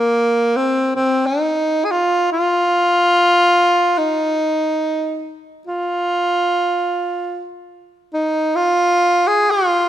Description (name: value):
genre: mongolian traditional, Mongolian folk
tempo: free time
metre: none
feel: none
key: F yu mode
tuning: A4 = 442 Hz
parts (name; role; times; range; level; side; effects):
- warm tenor saxophone; solo; 0.0-9.9 s; Bb3 to Ab4; -15 LUFS; equal; none
room: light reverb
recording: close, detailed microphones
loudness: -15 LUFS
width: side -11 dB against mid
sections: 0.0-9.9 A section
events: none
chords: none